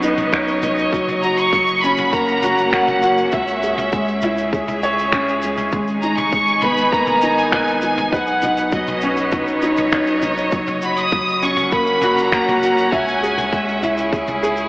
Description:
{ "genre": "piano and strings electronica", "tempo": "100 BPM", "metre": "4/4", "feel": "straight", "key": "unclear", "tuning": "A4 = 440 Hz", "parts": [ { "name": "rich studio violin section", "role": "melody", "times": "0.0-14.1 s", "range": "D#5 to D#6", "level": "-20 LUFS", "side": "equal", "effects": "tape echo" }, { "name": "clear string quartet", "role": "sustained chords", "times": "0.0-14.7 s", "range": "B2 to G#5", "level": "-22 LUFS", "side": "equal", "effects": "none" }, { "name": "dark upright piano", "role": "riff", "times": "0.0-14.7 s", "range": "F#3 to F#5", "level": "-19 LUFS", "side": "equal", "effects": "lush chorus, tape echo" }, { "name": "round analog bass", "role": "bass", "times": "0.0-14.7 s", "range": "F#1 to C#2", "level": "-34 LUFS", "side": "equal", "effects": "sidechain pumping" }, { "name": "jazz brush drum kit", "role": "drums", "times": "0.0-14.7 s", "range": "finger snaps, shaker, toms", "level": "-26 LUFS", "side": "equal", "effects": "none" }, { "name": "electronic kick drum", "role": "drums", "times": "0.3-14.2 s", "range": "none", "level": "-23 LUFS", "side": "equal", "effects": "none" } ], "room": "wet lush hall reverb, RT60 2.8 s", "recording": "dreamy mix soaked in reverb, AM radio sound", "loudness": "-15 LUFS", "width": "side -23 dB against mid", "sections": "0.0-14.7 A section", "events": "none", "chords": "0.0 Badd9; 0.9 F#; 3.3 C#m; 5.7 G#madd9; 8.1 Badd9; 10.5 F#; 12.9 C#m" }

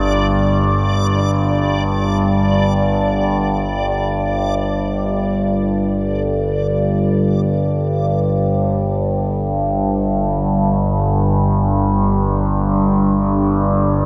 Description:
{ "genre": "dark ambient drone", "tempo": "free time", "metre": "none", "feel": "none", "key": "unclear", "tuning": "A4 = 440 Hz", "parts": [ { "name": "overtone-sweeping drone", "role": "drone", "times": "0.0-14.1 s", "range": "G1 to G2", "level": "-18 LUFS", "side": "equal", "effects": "chorus, built-in reverb" }, { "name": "backwards swelling texture", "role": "texture", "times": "0.0-5.1 s", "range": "D5", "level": "-27 LUFS", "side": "equal", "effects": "built-in reverb" }, { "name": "deep dark ambient pad", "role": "sustained chords", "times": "9.3-14.1 s", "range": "G3 to D5", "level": "-24 LUFS", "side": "equal", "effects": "chorus, built-in reverb" } ], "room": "wet huge ambient reverb, RT60 9.3 s", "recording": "dark, warm production", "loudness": "-17 LUFS", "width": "mono", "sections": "0.0-5.1 A section; 5.1-14.1 B section", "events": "fade-in on ambient pad 5.1-14.1", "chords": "0.0 G5" }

